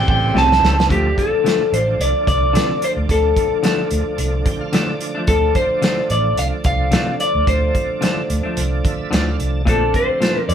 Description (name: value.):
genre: straight-eighth soul blues.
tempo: 110 BPM.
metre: 4/4.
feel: swing 54% on 16ths.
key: D minor.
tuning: A4 = 440 Hz.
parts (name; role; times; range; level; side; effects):
electric guitar through a small old amp; melody; 0.0-10.5 s; G4 to A5; -18 LUFS; left 1 dB; none.
bright tonewheel organ; accompaniment; 0.0-10.5 s; C#3 to A5; -26 LUFS; right 4 dB; slow rotary speaker, overdrive, chorus vibrato.
bright horn section; sustained chords; 0.0-0.8, 9.7-10.2 s; B#3 to D5; -30 LUFS; equal; none.
vintage muted fingered electric bass; bass; 0.0-10.5 s; A1 to D3; -20 LUFS; equal; none.
warm soul drum kit; drums; 0.1-10.5 s; hi-hat, kick drum, snare drum; -21 LUFS; equal; none.
clean electric guitar; stabs; 0.3-10.4 s; A2 to D4; -23 LUFS; left 3 dB; none.
room: light reverb.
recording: band playing live in one room.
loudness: -15 LUFS.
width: side -8 dB against mid.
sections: 0.9-10.5 A section.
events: drum fill 0.3-0.9; tonewheel organ fill 4.2-5.3, 8.6-9.7.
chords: 0.0 A7#9; 0.9 Dm; 9.7 Bbmaj7.